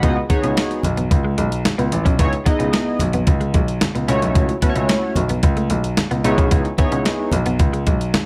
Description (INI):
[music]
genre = early-eighties boogie funk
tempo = 111 BPM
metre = 4/4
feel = straight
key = C# minor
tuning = A4 = 437 Hz
[part]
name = chorused polysynth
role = accompaniment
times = 0.0-7.3 s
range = A3 to B5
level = -24 LUFS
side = equal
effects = none
[part]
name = warm grand piano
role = bass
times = 0.0-8.1 s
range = A1 to C#2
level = -23 LUFS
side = equal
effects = none
[part]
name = clean 12-bit digital drum machine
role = drums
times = 0.0-8.3 s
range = hi-hat, kick drum, snare drum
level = -21 LUFS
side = equal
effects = none
[part]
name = congas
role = percussion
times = 0.0-8.3 s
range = none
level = -29 LUFS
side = equal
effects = none
[part]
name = clean electric guitar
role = riff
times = 0.2-8.2 s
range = G#3 to C#4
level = -29 LUFS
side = equal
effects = analog chorus
[sound]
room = light reverb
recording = none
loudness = -18 LUFS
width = mono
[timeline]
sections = 0.0-8.3 A section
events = none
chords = 0.0 G#m7; 2.2 C#m9; 4.1 F#m7; 6.2 C#m9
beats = | 0.03 0.57 1.11 1.65 | 2.19 2.73 3.27 3.81 | 4.36 4.89 5.44 5.98 | 6.52 7.06 7.60 8.14